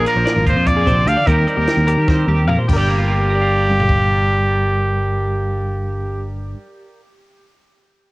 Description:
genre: math rock and midwest emo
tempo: 298 BPM (eighths)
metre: 7/8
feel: straight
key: G minor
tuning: A4 = 439 Hz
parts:
  - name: clear trumpet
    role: melody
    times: 0.0-6.3 s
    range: G4 to F5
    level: -19 LUFS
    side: right 1 dB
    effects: cassette tape
  - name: twelve-string electric guitar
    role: accompaniment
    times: 0.0-7.1 s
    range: G2 to F5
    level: -23 LUFS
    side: right 2 dB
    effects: harmonic tremolo, cassette tape
  - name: twelve-string electric guitar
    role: arpeggios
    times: 0.0-6.6 s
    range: G4 to G5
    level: -25 LUFS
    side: left 3 dB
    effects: wide subtle chorus, cassette tape, tape echo
  - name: fingered electric bass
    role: bass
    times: 0.0-6.5 s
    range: G1 to Eb3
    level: -18 LUFS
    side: equal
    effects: none
  - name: compact cocktail drum kit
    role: drums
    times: 0.1-4.0 s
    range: crash cymbal, hi-hat, kick drum, snare drum, toms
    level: -21 LUFS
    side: equal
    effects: cassette tape
room: light reverb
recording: home recording on cassette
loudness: -14 LUFS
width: side -21 dB against mid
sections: 0.0-2.7 A section; 2.7-5.5 B section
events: drum fill 2.1-2.7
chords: 0.0 Bb7; 1.3 Eb6; 2.7 Gm7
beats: 0.06 0.26 0.46 0.66 0.86 1.06 | 1.27 1.47 1.67 1.87 2.07 2.27 2.47 | 2.67 2.88 3.08 3.28 3.48 3.68 3.88 | 4.08 4.28 4.49 4.69 4.89 5.09 5.29

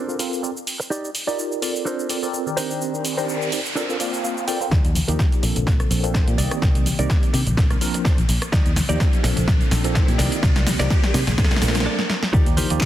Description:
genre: filtered disco house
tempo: 126 BPM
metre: 4/4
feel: swing 55% on 16ths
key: Bb major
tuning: A4 = 440 Hz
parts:
  - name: direct-recorded clean electric guitar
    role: riff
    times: 0.0-12.9 s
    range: D4 to G5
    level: -30 LUFS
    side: right 2 dB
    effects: sidechain pumping, low-pass filter
  - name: tine electric piano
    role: accompaniment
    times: 0.1-12.9 s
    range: Eb3 to A5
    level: -26 LUFS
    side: right 1 dB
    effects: medium stereo tremolo, phaser, sidechain pumping, low-pass filter
  - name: punchy analog drum machine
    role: drums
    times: 0.1-12.9 s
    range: handclaps, hi-hat, rim click, shaker, snare drum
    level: -26 LUFS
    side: equal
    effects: sidechain pumping on perc, sidechain pumping on hats
  - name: noise sweep and riser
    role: sound effects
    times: 3.0-11.9 s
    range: none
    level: -32 LUFS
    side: equal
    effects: none
  - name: fingered electric bass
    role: bass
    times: 4.7-12.8 s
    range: Bb1 to C3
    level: -23 LUFS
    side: equal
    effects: sidechain pumping, low-pass filter
  - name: electronic kick drum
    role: drums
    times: 4.7-12.9 s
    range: none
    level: -19 LUFS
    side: equal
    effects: none
  - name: tambourine and congas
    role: percussion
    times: 4.7-12.9 s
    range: none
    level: -30 LUFS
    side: left 3 dB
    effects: none
room: light reverb, digital ambience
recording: dense, heavily limited modern master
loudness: -18 LUFS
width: side -12 dB against mid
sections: 0.0-4.7 A section; 4.7-12.3 B section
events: filter sweep 0.0-4.7, 4.7-12.3; noise sweep 3.0-4.7; clean electric guitar fill 3.8-4.7; build-up 4.7-12.3; drum fill 4.7-11.9, 12.0-12.3; riser 4.7-11.9; break 11.9-12.3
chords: 0.0 Bbmaj9; 0.9 Ebmaj7; 1.9 Bbmaj9; 2.6 Cm9; 3.8 Bbmaj9; 6.4 Cm9; 7.6 Bbmaj9; 10.2 Cm9; 11.4 Bbmaj9; 12.3 Bbadd9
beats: 0.43 | 0.91 1.38 1.86 2.33 | 2.81 3.29 3.76 4.24 | 4.72 5.19 5.67 6.14 | 6.62 7.10 7.57 8.05 | 8.53 9.00 9.48 9.95 | 10.43 10.91 11.38 11.86 | 12.34 12.81

